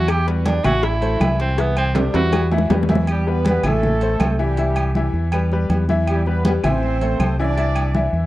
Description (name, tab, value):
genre	latin, salsa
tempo	160 BPM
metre	4/4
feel	straight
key	E minor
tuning	A4 = 441 Hz
part	clear tenor saxophone	melody	0.0-2.5 s	B3 to G4	-23 LUFS	right 3 dB	tape echo
part	bright upright piano	accompaniment	0.0-8.3 s	E3 to E5	-24 LUFS	left 3 dB	none
part	deep dub fingered electric bass	bass	0.0-8.3 s	A1 to E2	-20 LUFS	equal	none
part	agogo bells and timbales	percussion	0.1-7.9 s	none	-27 LUFS	right 4 dB	none
part	claves	percussion	0.1-7.9 s	none	-37 LUFS	left 2 dB	none
part	congas	percussion	0.1-8.3 s	none	-24 LUFS	equal	none
part	cowbell and bongos	percussion	0.1-3.0 s	none	-26 LUFS	left 5 dB	none
part	clear horn section	melody	3.1-8.1 s	G3 to D5	-24 LUFS	right 2 dB	none
room	studio reverb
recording	dry, close 1970s-style studio recording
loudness	-16 LUFS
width	side -16 dB against mid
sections	0.0-3.1 A section; 3.1-8.3 B section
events	tenor saxophone solo 0.0-3.1; drum fill 2.0-3.1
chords	0.0 Em; 0.8 Am; 1.6 C; 2.3 Em; 3.8 Am; 4.6 C; 5.3 Em; 6.8 Am; 7.6 Cadd9